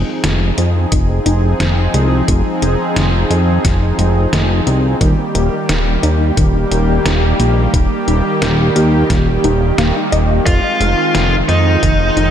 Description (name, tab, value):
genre	synthwave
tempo	88 BPM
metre	4/4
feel	straight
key	F minor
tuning	A4 = 440 Hz
part	soft supersaw	sustained chords	0.0-12.3 s	Eb3 to Ab4	-18 LUFS	equal	lush chorus, sidechain pumping
part	analog pluck	arpeggios	0.0-12.3 s	Eb3 to Eb5	-22 LUFS	left 2 dB	chorus, phaser, ping-pong delay
part	fat analog bass	bass	0.0-12.3 s	Eb1 to F2	-14 LUFS	equal	tube saturation
part	detuned 8-bit digital drum machine	drums	0.2-12.3 s	hi-hat, snare drum	-22 LUFS	equal	studio reverb
part	electronic kick drum	drums	0.9-12.0 s	none	-16 LUFS	equal	studio reverb
part	bluesy overdriven lead guitar	melody	10.5-12.3 s	Eb4 to F4	-15 LUFS	equal	distortion, ping-pong delay
room	moderate lush hall reverb, RT60 2.5 s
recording	dreamy mix soaked in reverb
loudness	-12 LUFS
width	side -9 dB against mid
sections	0.0-12.3 A section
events	filter sweep on synth arpeggio sound 0.0-12.3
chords	0.0 Fm7; 5.0 Eb; 10.5 Fm7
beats	0.24 0.92 1.60 | 2.28 2.96 3.65 4.33 | 5.01 5.69 6.37 7.06 | 7.74 8.42 9.10 9.78 | 10.46 11.15 11.83